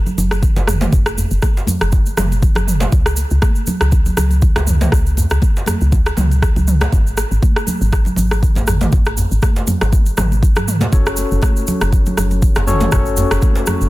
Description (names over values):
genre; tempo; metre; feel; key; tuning
afro house; 120 BPM; 4/4; swing 55% on 16ths; F# minor; A4 = 440 Hz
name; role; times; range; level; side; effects
woody FM bass; bass; 0.0-13.9 s; F#1 to G#2; -17 LUFS; equal; sidechain pumping
congas; percussion; 0.1-13.8 s; none; -24 LUFS; equal; none
tube shaker; percussion; 0.1-13.9 s; none; -28 LUFS; right 2 dB; none
deep house drum kit; drums; 0.3-13.8 s; rim click, toms; -21 LUFS; right 1 dB; overdrive
electronic kick drum; drums; 0.4-13.5 s; none; -14 LUFS; equal; overdrive
djembe; percussion; 0.6-13.8 s; none; -23 LUFS; right 1 dB; none
barky tine electric piano; stabs; 10.9-13.9 s; C#4 to C#5; -21 LUFS; left 4 dB; overdrive, sidechain pumping, ping-pong delay
room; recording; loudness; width
studio ambience; dense, heavily limited modern master; -13 LUFS; side -18 dB against mid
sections
0.0-13.9 A section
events
none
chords
0.0 N.C.; 10.9 F#m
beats
0.42 | 0.93 1.43 1.93 2.42 | 2.92 3.42 3.92 4.42 | 4.92 5.42 5.92 6.42 | 6.92 7.42 7.92 8.43 | 8.93 9.43 9.93 10.43 | 10.93 11.43 11.93 12.43 | 12.93 13.43